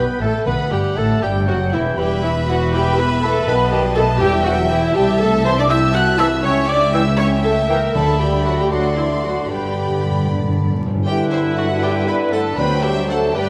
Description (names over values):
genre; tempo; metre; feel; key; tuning
quick classical-period movement for symphony orchestra; 79 BPM (dotted quarters); 6/8; rubato; G major; A4 = 439 Hz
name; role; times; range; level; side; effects
rich chamber violin section; melody; 0.0-13.5 s; E5 to F#6; -31 LUFS; equal; none
clear cor anglais; second line; 0.0-13.5 s; E4 to G5; -28 LUFS; equal; none
mellow hollow concert flute; second line; 0.0-13.5 s; G4 to F#6; -29 LUFS; equal; none
rich chamber violin section; second line; 0.0-13.5 s; E4 to C6; -30 LUFS; equal; none
warm clarinet; second line; 0.0-13.5 s; E4 to C6; -31 LUFS; equal; none
clear bassoon; accompaniment; 0.0-13.5 s; D3 to B3; -29 LUFS; equal; none
rich studio viola section; accompaniment; 0.0-13.5 s; E4 to F#5; -24 LUFS; equal; none
dark French horn section; sustained chords; 0.0-13.5 s; E3 to F#4; -26 LUFS; equal; none
rich chamber cello section; bass; 0.0-13.5 s; C2 to B4; -26 LUFS; equal; none
rich chamber double bass section; bass; 0.0-13.5 s; E1 to G2; -26 LUFS; equal; none
timpani; percussion; 0.5-1.2, 8.0-13.3 s; G2 to D3; -26 LUFS; equal; none
room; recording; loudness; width
moderate scoring stage reverb, RT60 1.7 s; vinyl crackle; -17 LUFS; mono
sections
0.0-11.1 A section; 11.1-13.5 A section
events
timpani fill 9.5-11.1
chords
0.5 Gmaj9; 1.2 Emadd9; 2.0 E5; 3.5 B7; 4.2 Em; 5.0 Am7/C; 6.4 C#dim; 8.0 Gmaj13/D; 8.7 D9; 9.5 G; 12.6 D7